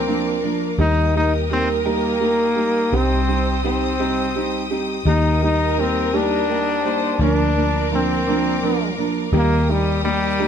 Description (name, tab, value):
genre	six-eight pop ballad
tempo	56 BPM (dotted quarters)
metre	6/8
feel	straight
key	Eb major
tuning	A4 = 441 Hz
part	brilliant trombone	melody	0.0-10.5 s	G3 to Eb4	-21 LUFS	left 2 dB	none
part	dark studio violin section	second line	0.0-10.5 s	G4 to C5	-26 LUFS	right 1 dB	none
part	bright studio string section	sustained chords	0.0-10.5 s	Bb4 to Eb6	-30 LUFS	equal	none
part	direct-recorded clean electric guitar	arpeggios	0.0-10.5 s	C3 to Bb4	-30 LUFS	left 6 dB	warbly pitch drift
part	vintage muted fingered electric bass	bass	0.0-10.5 s	C2 to Eb2	-22 LUFS	left 1 dB	none
part	dark upright piano	accompaniment	0.1-10.5 s	F3 to Eb4	-23 LUFS	right 3 dB	none
room	moderate studio reverb, RT60 0.8 s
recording	band playing live in one room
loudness	-17 LUFS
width	side -8 dB against mid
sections	0.0-10.5 A section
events	none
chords	0.0 Bb/D; 0.8 Eb; 2.9 Cm; 5.1 Eb; 7.2 Bb/D; 9.3 Eb